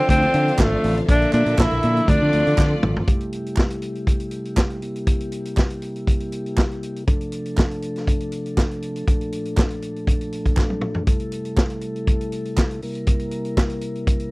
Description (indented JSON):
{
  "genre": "disco",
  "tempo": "120 BPM",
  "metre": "4/4",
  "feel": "straight",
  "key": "D minor",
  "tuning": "A4 = 441 Hz",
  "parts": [
    { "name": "breathy tenor saxophone", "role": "melody", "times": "0.0-2.8 s", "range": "A3 to E4", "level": "-20 LUFS", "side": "equal", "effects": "none" },
    { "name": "clear studio string section", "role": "second line", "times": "0.0-3.0 s", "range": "A3 to F5", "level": "-28 LUFS", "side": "equal", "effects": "none" },
    { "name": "mellow tonewheel organ", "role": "sustained chords", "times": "0.0-14.3 s", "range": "Bb2 to Bb4", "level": "-27 LUFS", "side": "left 1 dB", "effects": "slow rotary speaker" },
    { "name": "growling fingered electric bass", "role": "bass", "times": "0.1-3.0 s", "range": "G#1 to D3", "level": "-21 LUFS", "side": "equal", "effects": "overdrive" },
    { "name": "vintage drum kit", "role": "drums", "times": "0.1-14.3 s", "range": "hi-hat, kick drum, snare drum, toms", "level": "-20 LUFS", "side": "equal", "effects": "none" },
    { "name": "group handclap", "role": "percussion", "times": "0.6-13.7 s", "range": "none", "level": "-32 LUFS", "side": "right 4 dB", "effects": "none" }
  ],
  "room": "little or no reverb",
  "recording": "dry, close 1970s-style studio recording",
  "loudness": "-19 LUFS",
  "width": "side -24 dB against mid",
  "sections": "0.0-3.1 A section; 3.1-14.3 B section",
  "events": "drum fill 2.6-3.1, 10.6-11.1",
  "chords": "0.0 Dm7; 1.1 Bbmaj7; 2.1 Dm7; 3.1 Am7; 4.8 C7; 7.1 Dm7; 9.1 Bbmaj7; 11.1 Am7; 12.8 C7",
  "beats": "0.09 0.59 | 1.08 1.58 2.08 2.58 | 3.08 3.57 4.07 4.57 | 5.07 5.57 6.07 6.58 | 7.08 7.58 8.08 8.58 | 9.08 9.58 10.08 10.58 | 11.08 11.58 12.08 12.57 | 13.07 13.57 14.07"
}